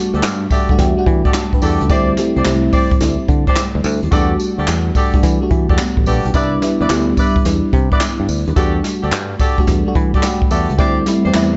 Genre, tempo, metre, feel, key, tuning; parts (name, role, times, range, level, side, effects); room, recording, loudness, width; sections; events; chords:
R&B, new jack swing; 108 BPM; 4/4; swing 67% on 16ths; E minor; A4 = 439 Hz
FM electric piano with soft pad layer; accompaniment; 0.0-11.6 s; G3 to B5; -20 LUFS; equal; chorus, phaser
warm horn section; stabs; 0.1-11.4 s; E4 to D5; -25 LUFS; equal; tape echo
fingered electric bass; bass; 0.1-11.6 s; A1 to E3; -21 LUFS; equal
jazz brush drum kit; drums; 0.1-11.5 s; handclaps, hi-hat, kick drum, snare drum, tambourine; -19 LUFS; equal
moderate echo chamber reverb, RT60 1.8 s, studio ambience; dark, warm production, nothing above 7.9 kHz; -15 LUFS; mono
0.0-11.6 A section
FM electric piano fill 0.2-1.9, 9.7-10.8
0.0 Em11; 1.9 D7sus4; 4.1 Em11; 6.3 Cmaj9; 8.6 Em11; 10.8 D7sus4